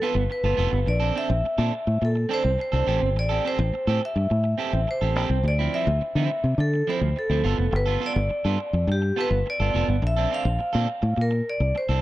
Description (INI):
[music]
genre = disco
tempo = 105 BPM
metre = 4/4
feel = straight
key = unclear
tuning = A4 = 440 Hz
[part]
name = vibraphone with hard mallets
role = melody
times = 0.0-12.0 s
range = G4 to F5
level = -26 LUFS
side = equal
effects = none
[part]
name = electric guitar at the edge of break-up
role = accompaniment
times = 0.0-12.0 s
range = F3 to A4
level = -30 LUFS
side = right 7 dB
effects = spring reverb
[part]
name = fingered electric bass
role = bass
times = 0.1-12.0 s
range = F1 to D3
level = -23 LUFS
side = left 1 dB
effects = none
[sound]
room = little or no reverb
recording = dry, close 1970s-style studio recording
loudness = -21 LUFS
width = side -16 dB against mid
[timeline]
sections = 0.0-12.0 A section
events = none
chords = 0.0 G9; 0.9 Bbmaj9; 2.9 Am7; 5.4 Dm9; 7.4 G9; 10.0 Bbmaj9